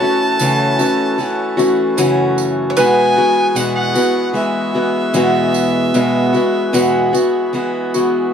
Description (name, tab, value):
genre	acoustic folk duo or small band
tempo	76 BPM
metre	4/4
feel	straight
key	E major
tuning	A4 = 440 Hz
part	rich fiddle	melody	0.0-8.3 s	E5 to A5	-19 LUFS	left 1 dB	tape echo
part	bowl-back mandolin	second line	0.0-8.3 s	B4 to C#5	-20 LUFS	right 2 dB	none
part	picked acoustic archtop guitar	accompaniment	0.0-8.3 s	E2 to F#4	-14 LUFS	equal	none
part	hand-pumped harmonium	sustained chords	0.0-8.3 s	E3 to A4	-26 LUFS	equal	none
part	tambourine	percussion	0.4-8.1 s	none	-28 LUFS	right 8 dB	none
room	light reverb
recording	dark, warm production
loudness	-13 LUFS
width	side -7 dB against mid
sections	0.0-8.3 A section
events	none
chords	0.0 F#m7; 2.8 Eadd9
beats	0.40 1.19 1.98 | 2.77 3.57 4.36 5.16 | 5.95 6.74 7.54